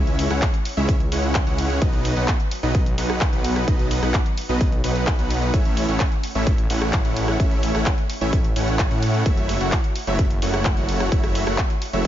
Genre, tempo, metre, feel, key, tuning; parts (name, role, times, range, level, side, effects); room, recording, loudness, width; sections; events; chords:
EDM, festival progressive house; 129 BPM; 4/4; straight; A4 = 440 Hz
supersaw chords; riff; 0.0-12.1 s; F#3 to F#5; -24 LUFS; right 1 dB; sidechain pumping, digital delay
detuned saw bass; bass; 0.0-12.1 s; F#1 to A2; -24 LUFS; equal; sidechain pumping
big-room dance drum kit; drums; 0.1-12.1 s; handclaps, hi-hat, rim click; -28 LUFS; equal
electronic kick drum; drums; 0.4-12.1 s; -21 LUFS; equal
digital ambience; nothing above 7.5 kHz; -18 LUFS; side -11 dB against mid
0.0-12.1 A section
0.0 C#m; 1.8 B; 5.5 A; 9.3 F#m7